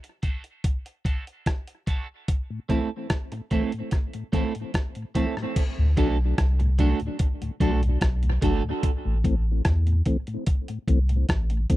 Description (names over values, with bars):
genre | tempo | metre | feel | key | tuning
dub reggae | 73 BPM | 4/4 | straight | unclear | A4 = 440 Hz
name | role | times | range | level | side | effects
electric guitar at the edge of break-up | accompaniment | 0.0-8.6 s | A3 to A4 | -30 LUFS | right 5 dB | lush chorus, high-pass filter, low-pass filter, tape echo
mellow tonewheel organ | accompaniment | 0.0-11.8 s | D2 to D4 | -31 LUFS | left 3 dB | chorus vibrato, slow rotary speaker, high-pass filter, low-pass filter, tape echo
dusty soul sampler-style drum kit | drums | 0.0-11.8 s | crash cymbal, hi-hat, kick drum, rim click | -25 LUFS | equal | none
warm sub bass | bass | 5.8-11.8 s | G1 to E2 | -22 LUFS | equal | none
room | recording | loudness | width
little or no reverb | dry, close 1970s-style studio recording | -23 LUFS | side -16 dB against mid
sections
0.0-5.6 A section; 5.6-11.8 B section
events
filter sweep 0.0-5.6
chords
0.0 D; 2.3 Am; 5.6 D; 8.8 Am